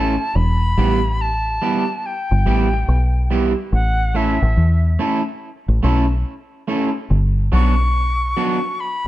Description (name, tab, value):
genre	roots reggae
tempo	71 BPM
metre	4/4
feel	swing 64% on 16ths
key	E dorian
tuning	A4 = 438 Hz
part	bright reedy jazz flute	melody	0.0-9.1 s	E5 to C#6	-23 LUFS	left 1 dB	tape echo
part	electric guitar at the edge of break-up	accompaniment	0.0-8.6 s	F#3 to A4	-21 LUFS	right 3 dB	tape echo
part	deep dub fingered electric bass	bass	0.0-8.3 s	E1 to E2	-16 LUFS	equal	none
room	moderate studio reverb, RT60 0.5 s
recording	dark, warm production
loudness	-16 LUFS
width	side -15 dB against mid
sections	0.0-7.1 A section; 7.1-9.1 B section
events	break 6.3-7.1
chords	0.3 Em; 3.7 A; 7.1 Gmaj7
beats	| 0.35 1.19 2.04 2.88 | 3.73 4.57 5.41 6.26 | 7.10 7.94 8.79